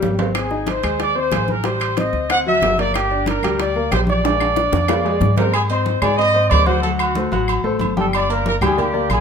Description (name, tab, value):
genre	latin, salsa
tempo	185 BPM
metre	4/4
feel	straight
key	unclear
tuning	A4 = 436 Hz
part	warm baby grand piano	accompaniment	0.0-9.2 s	F#3 to Ab5	-22 LUFS	left 3 dB	none
part	upright bass	bass	0.0-9.2 s	G1 to Ab2	-22 LUFS	equal	none
part	bongos	percussion	0.0-5.5 s	none	-28 LUFS	left 7 dB	none
part	congas	percussion	0.0-9.2 s	none	-27 LUFS	equal	none
part	timbales and agogo bells	percussion	0.0-9.2 s	none	-25 LUFS	right 6 dB	none
part	claves	percussion	0.3-9.2 s	none	-30 LUFS	left 5 dB	none
part	mellow trumpet section	melody	0.4-9.2 s	F#4 to F#5	-19 LUFS	equal	none
room	moderate large studio reverb, RT60 1.2 s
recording	minimal, uncompressed stereo recording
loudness	-16 LUFS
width	side -6 dB against mid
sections	0.0-5.5 A section; 5.5-9.2 B section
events	drum fill 0.0-0.4, 4.2-5.5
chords	0.4 Ab; 1.6 Am7b5; 2.3 D7; 2.9 Gm; 4.2 Bb7; 5.5 Ab; 6.8 D7; 8.1 Gm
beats	0.03 | 0.35 0.68 1.00 1.32 | 1.65 1.97 2.30 2.62 | 2.95 3.27 3.59 3.92 | 4.24 4.57 4.89 5.21 | 5.54 5.86 6.19 6.51 | 6.83 7.16 7.48 7.81 | 8.13 8.46 8.78 9.11